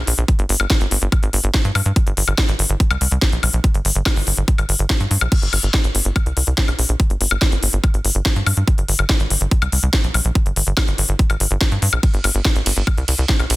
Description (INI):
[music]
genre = psychedelic trance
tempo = 143 BPM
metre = 4/4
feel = straight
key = G phrygian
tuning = A4 = 442 Hz
[part]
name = tight sequencer bass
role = bass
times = 0.0-13.6 s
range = G1 to G2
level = -18 LUFS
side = equal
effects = none
[part]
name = drum and bass drum kit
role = drums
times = 0.1-13.6 s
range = crash cymbal, hi-hat, ride cymbal, snare drum, woodblock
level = -20 LUFS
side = left 1 dB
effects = none
[part]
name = electronic kick drum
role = drums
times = 0.3-13.4 s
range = none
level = -17 LUFS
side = equal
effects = none
[sound]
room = little or no reverb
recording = dense, heavily limited modern master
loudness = -15 LUFS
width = side -19 dB against mid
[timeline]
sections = 0.0-13.6 A section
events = none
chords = none